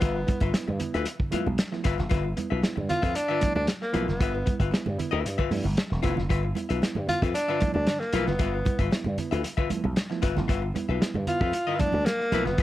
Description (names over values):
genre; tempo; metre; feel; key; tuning
funk; 115 BPM; 4/4; straight; G mixolydian; A4 = 441 Hz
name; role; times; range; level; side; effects
breathy tenor saxophone; melody; 0.0-12.6 s; Bb3 to F4; -27 LUFS; equal; none
archtop guitar, miked and amplified; accompaniment; 0.0-12.6 s; F4 to E5; -32 LUFS; left 9 dB; none
reed electric piano; stabs; 0.0-12.6 s; G2 to E4; -35 LUFS; right 4 dB; analog delay
slap bass with an envelope filter; bass; 0.0-12.6 s; E1 to G2; -28 LUFS; equal; none
warm soul drum kit; drums; 0.0-12.6 s; hi-hat, kick drum, snare drum; -28 LUFS; equal; none
congas; percussion; 0.0-12.6 s; none; -35 LUFS; right 4 dB; none
room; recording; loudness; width
studio ambience; none; -24 LUFS; side -14 dB against mid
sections
0.0-12.6 A section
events
none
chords
0.0 G13